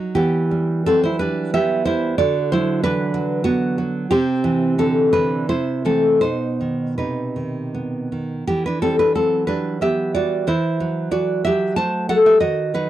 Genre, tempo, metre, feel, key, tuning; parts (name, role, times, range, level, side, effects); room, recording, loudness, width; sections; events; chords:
romantic piece for solo classical guitar; 79-97 BPM; 3/4; rubato; E minor; A4 = 440 Hz
nylon-string guitar; solo; 0.0-12.9 s; B2 to A5; -17 LUFS; right 1 dB
little or no reverb; dry, close 1970s-style studio recording; -17 LUFS; side -12 dB against mid
0.2-12.9 A section
0.2 Em; 2.2 Bm/D; 4.1 Cmaj13; 5.5 C6; 6.2 B; 8.5 Em; 10.5 F#m7b5/E